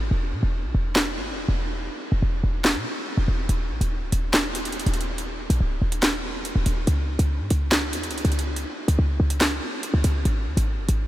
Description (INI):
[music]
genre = hip hop, drill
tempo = 142 BPM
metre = 4/4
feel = half-time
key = unclear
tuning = A4 = 443 Hz
[part]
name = short 808-style bass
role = bass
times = 0.0-11.1 s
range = C#1 to B2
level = -23 LUFS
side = equal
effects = none
[part]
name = drill drum kit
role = drums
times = 1.0-11.0 s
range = handclaps, hi-hat, snare drum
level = -26 LUFS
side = equal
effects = none
[sound]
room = moderate huge ambient reverb, RT60 8.4 s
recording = dreamy mix soaked in reverb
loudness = -21 LUFS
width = side -15 dB against mid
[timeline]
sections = 0.0-11.1 A section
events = break 0.0-3.5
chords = none